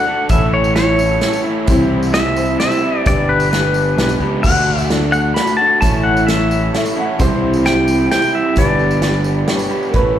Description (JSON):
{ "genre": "folk rock and heartland rock", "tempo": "131 BPM", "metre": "3/4", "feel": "straight", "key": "unclear", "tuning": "A4 = 440 Hz", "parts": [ { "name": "pedal steel guitar", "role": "melody", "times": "0.0-9.7 s", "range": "B4 to B5", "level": "-17 LUFS", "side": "left 2 dB", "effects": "slapback echo" }, { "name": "picked steel-string acoustic guitar", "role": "accompaniment", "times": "0.0-10.2 s", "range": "A2 to D5", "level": "-22 LUFS", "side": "left 4 dB", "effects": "slapback echo" }, { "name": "warm concert grand piano", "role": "accompaniment", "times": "0.0-10.2 s", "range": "B3 to B5", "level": "-28 LUFS", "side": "right 1 dB", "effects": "none" }, { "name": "mellow tonewheel organ", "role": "sustained chords", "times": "0.0-9.9 s", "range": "D4 to E6", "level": "-32 LUFS", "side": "right 1 dB", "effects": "none" }, { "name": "raw garage guitar", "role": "riff", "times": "0.0-10.2 s", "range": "G2 to G4", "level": "-20 LUFS", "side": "right 3 dB", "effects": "overdrive, slapback echo" }, { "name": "fingered electric bass", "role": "bass", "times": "0.3-10.2 s", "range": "G1 to D2", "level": "-18 LUFS", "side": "equal", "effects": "none" }, { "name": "unplugged drum kit", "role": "drums", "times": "0.3-10.1 s", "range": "crash cymbal, hi-hat, kick drum, snare drum", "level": "-19 LUFS", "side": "right 1 dB", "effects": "none" }, { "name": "tambourine", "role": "percussion", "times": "0.3-9.9 s", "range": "none", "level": "-35 LUFS", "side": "right 2 dB", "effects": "none" }, { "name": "clear upright piano", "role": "second line", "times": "6.8-7.5, 9.9-10.2 s", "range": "G4 to F#5", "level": "-20 LUFS", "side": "right 3 dB", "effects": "slapback echo" } ], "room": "light reverb, small room ambience", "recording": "live gig heard through the venue's PA, recital hall reverb", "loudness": "-12 LUFS", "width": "side -10 dB against mid", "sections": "0.0-9.9 A section", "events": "grand piano fill 9.0-9.9", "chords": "0.3 A; 1.7 C; 3.1 G; 4.4 D; 5.8 A; 7.2 C; 8.6 G" }